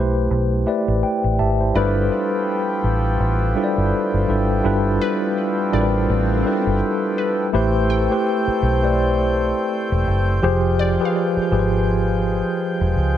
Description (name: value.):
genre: contemporary R&B.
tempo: 83 BPM.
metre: 4/4.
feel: swing 58% on 16ths.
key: unclear.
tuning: A4 = 439 Hz.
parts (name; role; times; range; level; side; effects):
mellow tine electric piano; accompaniment; 0.0-13.2 s; F3 to A5; -20 LUFS; left 1 dB; medium stereo tremolo.
vintage muted fingered electric bass; bass; 0.0-13.2 s; E1 to Db2; -20 LUFS; equal; none.
mellow accordion; sustained chords; 1.8-13.2 s; F3 to G5; -25 LUFS; left 1 dB; none.
swell; sound effects; 5.7-6.8 s; none; -33 LUFS; equal; none.
glassy wavetable pluck; texture; 1.8-13.0 s; B4 to G5; -31 LUFS; equal; chorus, tape echo.
room: light reverb, digital ambience.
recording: none.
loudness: -17 LUFS.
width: side -11 dB against mid.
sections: 0.0-7.5 A section; 7.5-13.2 B section.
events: tine electric piano fill 0.3-1.8; swell 5.7-7.5; break 6.8-7.5.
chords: 0.0 Am9; 1.8 G13; 7.5 Am9; 10.4 Fmadd9.